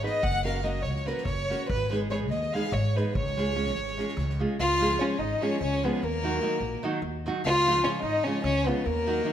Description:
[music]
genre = balkan folk, Balkan wedding band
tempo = 293 BPM (eighths)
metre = 7/8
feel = straight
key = Db mixolydian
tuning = A4 = 441 Hz
[part]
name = dark fiddle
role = melody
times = 0.0-9.3 s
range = Bb3 to Gb5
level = -28 LUFS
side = equal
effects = none
[part]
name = warm violin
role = second line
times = 0.0-9.3 s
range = Bb4 to Gb5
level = -33 LUFS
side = left 4 dB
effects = none
[part]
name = nylon-string guitar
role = accompaniment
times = 0.0-9.3 s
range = Db3 to Cb5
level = -31 LUFS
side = right 2 dB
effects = none
[part]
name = upright bass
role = bass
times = 0.0-9.2 s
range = Gb1 to Ab2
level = -31 LUFS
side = equal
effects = none
[part]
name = soft-mallet drum kit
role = percussion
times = 0.1-4.3 s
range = kick drum, snare drum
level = -37 LUFS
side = equal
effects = none
[sound]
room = light reverb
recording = none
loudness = -25 LUFS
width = side -10 dB against mid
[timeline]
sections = 0.0-4.6 A section; 4.6-9.3 B section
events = speeding up 0.0-9.3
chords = 0.2 Gb; 1.7 Abm; 3.2 Db; 6.0 Ebm; 7.4 Db

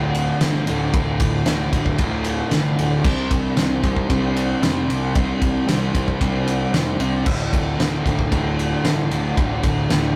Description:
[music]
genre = quiet-loud alternative rock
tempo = 114 BPM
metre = 4/4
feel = straight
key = D minor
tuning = A4 = 440 Hz
[part]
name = tonewheel organ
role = sustained chords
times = 0.0-10.2 s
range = C4 to D5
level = -36 LUFS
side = equal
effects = none
[part]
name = crunchy overdriven guitar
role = riff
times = 0.0-10.2 s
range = D2 to C4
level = -28 LUFS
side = equal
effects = none
[part]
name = overdriven semi-hollow guitar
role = riff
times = 0.0-10.2 s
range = D2 to C4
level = -26 LUFS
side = equal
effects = none
[part]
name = fuzz picked electric bass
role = bass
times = 0.0-10.1 s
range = D1 to C2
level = -29 LUFS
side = equal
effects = overdrive
[part]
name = loose indie drum kit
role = drums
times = 0.1-10.0 s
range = crash cymbal, kick drum, ride cymbal, snare drum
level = -24 LUFS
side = equal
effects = none
[sound]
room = moderate studio reverb, RT60 0.5 s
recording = rough rehearsal-room recording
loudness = -20 LUFS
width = mono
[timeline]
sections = 0.0-10.2 A section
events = none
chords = 0.0 Dm7; 3.0 Csus2; 7.3 Dm7

